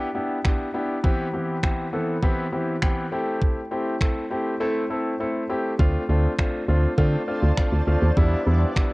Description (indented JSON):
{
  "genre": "dance-pop",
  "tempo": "101 BPM",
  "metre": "4/4",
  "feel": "straight",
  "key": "D dorian",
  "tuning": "A4 = 440 Hz",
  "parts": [
    { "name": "warm concert grand piano", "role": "accompaniment", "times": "0.0-8.9 s", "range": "E3 to A4", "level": "-25 LUFS", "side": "left 1 dB", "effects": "sidechain pumping, cassette tape" },
    { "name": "clean 12-bit digital drum machine", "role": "drums", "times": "0.4-8.9 s", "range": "finger snaps, kick drum", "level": "-22 LUFS", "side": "equal", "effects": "cassette tape" },
    { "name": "shimmering ambient pad", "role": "sustained chords", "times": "6.4-8.9 s", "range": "E4 to A5", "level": "-33 LUFS", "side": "right 1 dB", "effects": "chorus, built-in reverb, sidechain pumping, cassette tape" },
    { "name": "organ-like FM bass", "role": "bass", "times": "5.8-8.7 s", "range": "D2 to D3", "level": "-19 LUFS", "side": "equal", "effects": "sidechain pumping" }
  ],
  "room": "light reverb",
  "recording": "home recording on cassette",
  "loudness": "-21 LUFS",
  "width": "side -22 dB against mid",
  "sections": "0.0-8.9 A section",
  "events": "drums muted 4.6-5.8",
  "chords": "0.0 Em7; 1.0 Cmaj7/E; 3.1 Am7; 5.8 Dm7; 8.2 Em7"
}